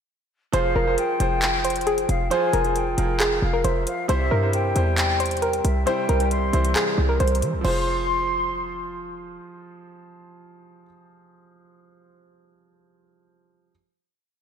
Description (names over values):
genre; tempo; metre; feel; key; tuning
hip hop, trap; 135 BPM; 4/4; half-time; F harmonic minor; A4 = 441 Hz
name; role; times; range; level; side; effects
soft round pluck; melody; 0.5-8.9 s; Ab4 to C5; -25 LUFS; right 1 dB; chorus, ping-pong delay
mellow silver concert flute; second line; 0.5-8.9 s; E5 to C6; -27 LUFS; left 4 dB; ping-pong delay
clear concert grand piano; accompaniment; 0.5-13.7 s; C3 to C5; -28 LUFS; right 2 dB; none
short 808-style bass; bass; 0.5-9.4 s; F1 to E3; -24 LUFS; equal; none
trap drum kit; drums; 0.5-7.7 s; crash cymbal, handclaps, hi-hat; -28 LUFS; equal; none
room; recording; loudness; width
moderate lush hall reverb, RT60 2.0 s; dreamy mix soaked in reverb; -20 LUFS; side -8 dB against mid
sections
0.5-7.6 hook; 7.6-11.2 final chord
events
none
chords
0.5 Fm; 4.1 C; 7.6 Fm